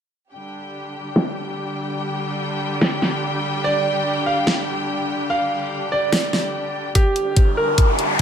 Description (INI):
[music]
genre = heavy wobble dubstep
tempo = 145 BPM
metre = 4/4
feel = half-time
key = unclear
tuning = A4 = 438 Hz
[part]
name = rich studio string section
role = sustained chords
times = 0.3-8.2 s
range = D3 to G5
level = -24 LUFS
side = left 1 dB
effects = vintage 12-bit sampler grit, sidechain pumping, low-pass filter
[part]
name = dubstep drum kit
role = drums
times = 1.2-8.2 s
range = hi-hat, snare drum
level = -20 LUFS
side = equal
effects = low-pass filter on snare, low-pass filter on hats
[part]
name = clear concert grand piano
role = melody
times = 3.6-7.9 s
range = G4 to F5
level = -22 LUFS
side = right 2 dB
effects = dub echo
[part]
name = electronic kick drum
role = drums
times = 7.0-8.2 s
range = none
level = -15 LUFS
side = equal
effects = none
[part]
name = riser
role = sound effects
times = 7.2-8.2 s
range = none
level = -22 LUFS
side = equal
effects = none
[sound]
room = moderate digital room reverb, RT60 1.1 s, studio ambience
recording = none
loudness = -18 LUFS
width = side -8 dB against mid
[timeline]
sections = 0.3-7.0 A section; 7.0-8.2 B section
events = filter sweep on drum 0.3-7.0; build-up 7.0-8.2; filter sweep on string section 7.0-8.2; riser 7.2-8.2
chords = 0.3 G5